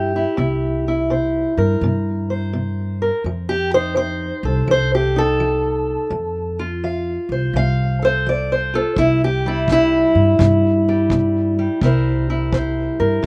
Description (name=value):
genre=acoustic country blues, solo or duo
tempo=84 BPM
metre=4/4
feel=swing 66% on 8ths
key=C mixolydian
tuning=A4 = 437 Hz
part: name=fingerpicked steel-string acoustic guitar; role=melody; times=0.0-13.3 s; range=C3 to F5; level=-20 LUFS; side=equal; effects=none
part: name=upright bass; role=bass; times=0.0-13.3 s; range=C2 to G2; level=-23 LUFS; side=equal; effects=none
part: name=kick drum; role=drums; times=9.0-13.3 s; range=none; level=-25 LUFS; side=equal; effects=none
room=little or no reverb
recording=recorded outdoors, with no room sound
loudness=-19 LUFS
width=mono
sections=0.0-13.3 A section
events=steel-string acoustic guitar solo 0.0-13.3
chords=0.0 C7; 3.2 F7; 9.0 C7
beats=| 0.38 1.10 1.82 2.53 | 3.25 3.96 4.68 5.39 | 6.11 6.82 7.54 8.25 | 8.97 9.68 10.39 11.11 | 11.82 12.53 13.25